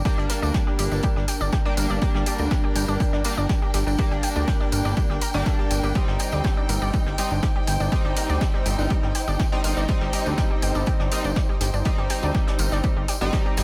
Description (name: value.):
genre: melodic techno.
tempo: 122 BPM.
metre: 4/4.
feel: straight.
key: unclear.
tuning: A4 = 440 Hz.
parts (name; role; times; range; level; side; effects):
dark studio string section; sustained chords; 0.0-13.6 s; D4 to G5; -34 LUFS; equal; sidechain pumping.
fat analog bass; bass; 0.0-13.6 s; G1 to D2; -28 LUFS; equal; sidechain pumping.
analog pluck; arpeggios; 0.1-13.6 s; D3 to Bb5; -34 LUFS; equal; chorus, cassette tape, sidechain pumping, delay.
sync-sweep polysynth; stabs; 0.1-13.6 s; G3 to Eb4; -32 LUFS; equal; chorus, sidechain pumping, delay.
electronic kick drum; drums; 0.1-13.4 s; none; -26 LUFS; equal; overdrive.
jazz brush drum kit; drums; 0.1-13.6 s; hi-hat, snare drum; -42 LUFS; equal; high-pass filter on hats, high-pass filter on snare, high-pass filter on room.
tambourine; percussion; 0.1-13.6 s; none; -39 LUFS; equal; none.
electronic hi-hat; drums; 0.3-13.6 s; none; -35 LUFS; equal; overdrive.
room: light reverb, small room ambience.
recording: none.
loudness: -23 LUFS.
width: mono.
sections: 0.0-13.6 A section.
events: none.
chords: 0.0 Gm; 6.0 Cm/G.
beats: | 0.05 0.54 1.03 1.53 | 2.02 2.51 3.00 3.49 | 3.98 4.48 4.97 5.46 | 5.95 6.44 6.94 7.43 | 7.92 8.41 8.90 9.39 | 9.89 10.38 10.87 11.36 | 11.85 12.35 12.84 13.33.